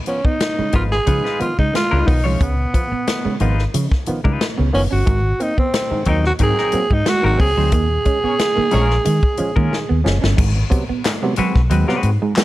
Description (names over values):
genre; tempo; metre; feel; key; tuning
funk; 90 BPM; 4/4; straight; unclear; A4 = 440 Hz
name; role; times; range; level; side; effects
raspy tenor saxophone; melody; 0.1-10.0 s; Cb4 to Ab4; -20 LUFS; right 1 dB; none
clean electric guitar; riff; 0.1-12.4 s; F3 to Db4; -24 LUFS; right 6 dB; none
muted clav; stabs; 0.1-12.4 s; Ab2 to Db4; -26 LUFS; right 2 dB; none
swinging big-band drum kit; drums; 0.1-12.4 s; crash cymbal, hi-hat, kick drum, snare drum; -20 LUFS; left 1 dB; none
vintage muted fingered electric bass; bass; 0.2-12.2 s; Gb1 to Eb3; -18 LUFS; equal; none
semi-hollow electric guitar; accompaniment; 0.7-12.1 s; Gb3 to Db5; -24 LUFS; left 5 dB; harmonic tremolo
mellow horn section; second line; 8.2-8.9 s; Db4 to Db5; -28 LUFS; equal; none
group handclap; percussion; 11.1-12.4 s; none; -25 LUFS; left 2 dB; none
room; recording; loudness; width
small room ambience; dark, warm production; -15 LUFS; side -16 dB against mid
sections
0.0-10.4 A section; 10.4-12.4 B section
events
band accent 7.7-10.4; drum fill 9.7-10.4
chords
0.0 Db9; 5.1 Ab9; 7.7 Eb9sus4; 10.4 Ab7#9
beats
0.41 1.07 1.74 | 2.40 3.07 3.74 4.40 | 5.07 5.73 6.40 7.06 | 7.73 8.39 9.06 9.72 | 10.38 11.05 11.71 12.37